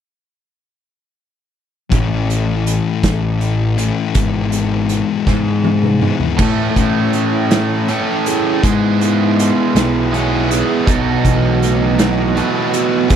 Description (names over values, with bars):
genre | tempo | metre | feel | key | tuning
indie rock | 54 BPM (dotted quarters) | 6/8 | straight | unclear | A4 = 440 Hz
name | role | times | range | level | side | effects
thick fuzz guitar | riff | 1.9-13.2 s | G#2 to C#5 | -18 LUFS | left 8 dB | distortion
fuzz picked electric bass | bass | 1.9-13.2 s | G#1 to A2 | -18 LUFS | equal | overdrive
loose indie drum kit | drums | 1.9-13.2 s | crash cymbal, hi-hat, kick drum, snare drum, toms | -18 LUFS | right 1 dB | none
overdriven electric guitar | riff | 6.4-13.2 s | E2 to A4 | -17 LUFS | right 9 dB | lush chorus, slapback echo
room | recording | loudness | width
little or no reverb | none | -13 LUFS | side -8 dB against mid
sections
1.9-6.4 A section; 6.4-13.2 B section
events
drum fill 5.3-6.4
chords
1.9 A; 4.2 E/G#; 6.4 Amaj7; 8.6 E6/G#; 10.9 B7sus4